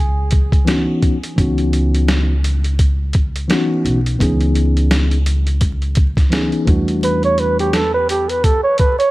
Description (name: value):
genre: hip hop, jazz-hop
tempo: 85 BPM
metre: 4/4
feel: swing 57% on 16ths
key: unclear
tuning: A4 = 440 Hz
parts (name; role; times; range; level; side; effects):
- breathy flugelhorn; melody; 0.0-0.7, 7.0-9.1 s; G4 to C#5; -16 LUFS; right 2 dB; dub echo
- upright bass; bass; 0.0-8.5 s; B1 to E2; -18 LUFS; equal; none
- boom bap sampler-style drum kit; drums; 0.3-9.1 s; hi-hat, kick drum, snare drum; -17 LUFS; equal; none
- mellow tine electric piano; accompaniment; 0.6-7.8 s; E3 to G#4; -19 LUFS; left 1 dB; slow stereo tremolo
room: light reverb, small room ambience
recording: echo-heavy mix, vinyl crackle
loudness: -13 LUFS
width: side -19 dB against mid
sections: 0.0-9.1 A section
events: none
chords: 0.0 C#m11; 6.7 Em11